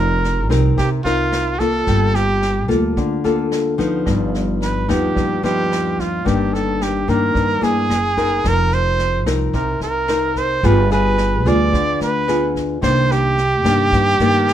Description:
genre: bossa nova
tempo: 110 BPM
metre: 4/4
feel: straight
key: G minor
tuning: A4 = 440 Hz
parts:
  - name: warm trumpet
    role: melody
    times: 0.0-14.5 s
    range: F4 to D5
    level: -19 LUFS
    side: right 2 dB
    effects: none
  - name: nylon-string guitar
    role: accompaniment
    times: 0.0-14.5 s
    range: G2 to Bb4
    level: -19 LUFS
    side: left 3 dB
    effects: none
  - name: upright bass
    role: bass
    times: 0.0-14.5 s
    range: F1 to G2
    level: -21 LUFS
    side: right 1 dB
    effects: none
  - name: vintage brush drum kit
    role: drums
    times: 0.2-14.5 s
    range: kick drum, rim click, snare drum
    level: -27 LUFS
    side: equal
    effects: none
room: moderate studio reverb, RT60 0.8 s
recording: minimal, uncompressed stereo recording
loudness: -15 LUFS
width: side -10 dB against mid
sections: 0.0-14.5 A section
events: none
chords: 0.0 F7sus4; 1.9 Gm9; 4.1 Gaug7; 6.3 Ebmaj7/G; 7.9 F#9; 8.4 F7sus4; 10.6 G7b9; 12.8 Cm9

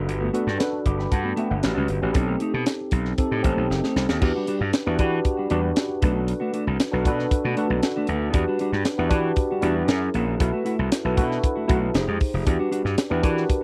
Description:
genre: polished 1980s jazz-funk pop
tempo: 116 BPM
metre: 4/4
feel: straight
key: E minor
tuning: A4 = 441 Hz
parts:
  - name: tine electric piano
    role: accompaniment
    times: 0.0-13.6 s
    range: C4 to D6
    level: -28 LUFS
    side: equal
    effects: analog chorus
  - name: gritty slap bass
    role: bass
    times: 0.0-13.4 s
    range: F1 to E3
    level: -27 LUFS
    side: equal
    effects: overdrive
  - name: mellow electric guitar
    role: riff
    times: 0.1-13.6 s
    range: G3 to G4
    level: -31 LUFS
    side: equal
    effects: subtle chorus
  - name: tight funk drum kit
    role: drums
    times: 0.1-13.6 s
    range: crash cymbal, hi-hat, kick drum, snare drum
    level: -26 LUFS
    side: equal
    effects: none
room: little or no reverb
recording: dry, close 1970s-style studio recording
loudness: -23 LUFS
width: mono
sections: 0.0-4.2 A section; 4.2-13.6 B section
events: drum fill 3.7-4.2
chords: 0.0 Gmaj9; 1.6 A13; 2.2 B7b9b13; 4.2 Em9; 6.0 Bm7; 8.3 Em9; 9.9 F#7; 10.4 B7sus4; 12.0 Fm9; 12.5 Em9

